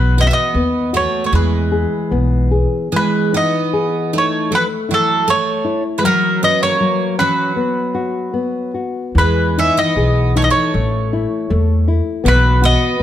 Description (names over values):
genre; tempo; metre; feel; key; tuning
fado-style ballad; 72-81 BPM; 2/4; rubato; E major; A4 = 440 Hz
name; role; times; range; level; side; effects
mandolin; melody; 0.0-13.0 s; A4 to E5; -18 LUFS; right 1 dB; none
picked twelve-string acoustic guitar; second line; 0.0-13.0 s; F#3 to C#4; -22 LUFS; right 5 dB; lush chorus
nylon-string guitar; accompaniment; 0.0-13.0 s; E3 to G#4; -20 LUFS; left 4 dB; none
upright bass; bass; 0.0-2.6, 9.1-13.0 s; A1 to E2; -16 LUFS; equal; none
room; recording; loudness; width
light reverb; close, detailed microphones; -14 LUFS; side -11 dB against mid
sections
0.0-2.9 A section; 2.9-13.0 A section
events
none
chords
0.0 B; 1.3 E; 2.9 Emaj7; 4.5 A5; 6.0 F#5; 7.6 B5; 9.1 Emaj7; 10.7 A; 12.2 B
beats
0.55 | 1.32 2.12 | 2.93 3.73 | 4.52 5.28 | 6.05 6.81 | 7.56 8.34 | 9.15 9.96 | 10.74 11.50 | 12.25 12.99